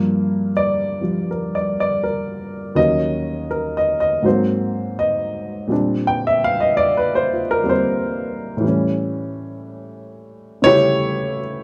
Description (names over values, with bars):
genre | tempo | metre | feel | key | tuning
solo jazz | 81 BPM | 4/4 | swing 68% on 8ths, rubato | unclear | A4 = 439 Hz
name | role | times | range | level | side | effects
dark baby grand piano | solo | 0.0-11.6 s | Eb2 to G5 | -20 LUFS | equal | none
room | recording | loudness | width
moderate club reverb, RT60 0.6 s | none | -19 LUFS | mono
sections
0.0-11.6 A section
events
grand piano solo 0.0-11.6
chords
0.0 Gm7; 2.8 Ebm7; 4.3 Ab9; 5.7 Bb69; 8.6 A7